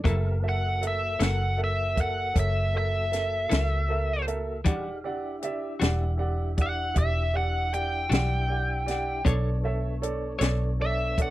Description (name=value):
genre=slow blues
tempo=52 BPM (dotted quarters)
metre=12/8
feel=straight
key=unclear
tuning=A4 = 440 Hz
part: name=clean electric guitar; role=accompaniment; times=0.0-10.6 s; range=E3 to C#5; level=-31 LUFS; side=left 5 dB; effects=tremolo
part: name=warm upright piano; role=accompaniment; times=0.0-11.3 s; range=G4 to F#5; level=-33 LUFS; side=right 4 dB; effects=none
part: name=mellow tonewheel organ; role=sustained chords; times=0.0-11.3 s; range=A#3 to E#5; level=-39 LUFS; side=left 1 dB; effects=slow rotary speaker, chorus vibrato
part: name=vintage muted fingered electric bass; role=bass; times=0.0-11.3 s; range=E1 to C#2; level=-28 LUFS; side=equal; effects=none
part: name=compact cocktail drum kit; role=drums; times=0.1-11.3 s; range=hi-hat, kick drum, snare drum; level=-26 LUFS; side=equal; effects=none
part: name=biting lead guitar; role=melody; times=0.5-11.3 s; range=E5 to G5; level=-28 LUFS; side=equal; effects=overdrive, slapback echo
room=little or no reverb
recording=dry, close 1970s-style studio recording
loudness=-24 LUFS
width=side -15 dB against mid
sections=0.0-11.3 A section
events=none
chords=0.1 F#7#9; 4.7 Em9; 9.3 Bm9